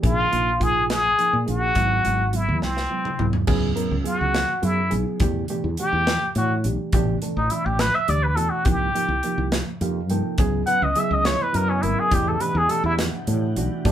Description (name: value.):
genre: electric jazz fusion.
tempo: 70 BPM (dotted quarters).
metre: 6/8.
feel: straight.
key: unclear.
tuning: A4 = 441 Hz.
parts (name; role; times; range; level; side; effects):
reed electric piano; accompaniment; 0.0-13.9 s; B2 to G5; -27 LUFS; right 3 dB; overdrive.
woody fretless electric bass; bass; 0.0-13.9 s; Ab1 to Bb2; -24 LUFS; equal; none.
modern studio drum kit; drums; 0.0-13.9 s; crash cymbal, hi-hat, kick drum, snare drum, toms; -26 LUFS; equal; none.
trumpet with plunger mute; melody; 0.1-12.9 s; C4 to F#5; -22 LUFS; left 1 dB; none.
glassy FM pad; sustained chords; 10.6-13.9 s; C#3 to F#5; -34 LUFS; left 2 dB; ensemble chorus, built-in reverb.
room: moderate studio ambience, RT60 0.5 s.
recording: band playing live in one room.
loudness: -19 LUFS.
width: side -10 dB against mid.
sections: 0.0-3.5 A section; 3.5-13.9 B section.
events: drum fill 2.6-3.5; muted trumpet solo 3.5-13.9; reed electric piano fill 9.5-10.4.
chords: 0.0 Bb9sus4; 1.8 Ab7alt; 3.5 C#m7; 5.2 Em7; 6.9 Asus2; 8.7 Cm7; 10.4 C#m9; 12.1 Em9.